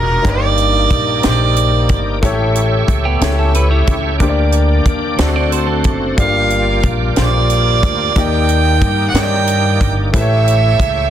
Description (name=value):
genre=slow gospel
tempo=61 BPM (dotted quarters)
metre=6/8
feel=straight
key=G minor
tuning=A4 = 441 Hz
part: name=rich fiddle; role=melody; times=0.0-2.0, 6.2-11.1 s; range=Bb4 to G5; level=-17 LUFS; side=right 6 dB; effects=none
part: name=warm concert grand piano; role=accompaniment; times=0.0-11.1 s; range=G2 to D5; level=-19 LUFS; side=left 4 dB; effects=none
part: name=bright tonewheel organ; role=sustained chords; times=0.0-11.1 s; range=Ab3 to D5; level=-22 LUFS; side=right 2 dB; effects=slow rotary speaker, overdrive, chorus vibrato
part: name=upright bass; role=bass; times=0.0-11.1 s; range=E1 to G2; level=-16 LUFS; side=equal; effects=none
part: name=tight funk drum kit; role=drums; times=0.2-11.0 s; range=hi-hat, kick drum, snare drum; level=-18 LUFS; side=equal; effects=none
part: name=clean electric guitar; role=second line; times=3.1-6.2 s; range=B3 to D5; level=-23 LUFS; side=right 5 dB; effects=none
room=light reverb, studio reverb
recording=dense, heavily limited modern master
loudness=-12 LUFS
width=side -10 dB against mid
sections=0.0-11.1 A section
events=none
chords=0.2 Ebmaj7/G; 2.2 A7; 4.2 Gm/D; 5.2 D7; 6.2 Gm7; 8.2 Ebmaj7; 10.1 A7